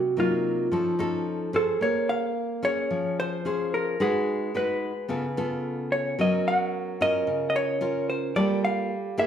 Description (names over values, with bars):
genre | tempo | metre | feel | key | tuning
bossa nova | 110 BPM | 4/4 | straight | unclear | A4 = 440 Hz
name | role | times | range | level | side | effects
vintage hollow-body jazz guitar | melody | 0.0-9.3 s | F4 to Gb5 | -26 LUFS | equal | plate reverb
nylon-string guitar | accompaniment | 0.0-9.3 s | C3 to C5 | -27 LUFS | equal | none
room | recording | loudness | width
wet large studio reverb, RT60 1.1 s | heard from further back in the room | -24 LUFS | side -9 dB against mid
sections
0.0-9.3 A section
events
none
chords
0.0 Cm7b5; 0.7 F7alt; 1.8 Bbm9; 4.0 Abm7; 5.1 Dbaug7; 6.2 Gbmaj7; 8.4 Gm9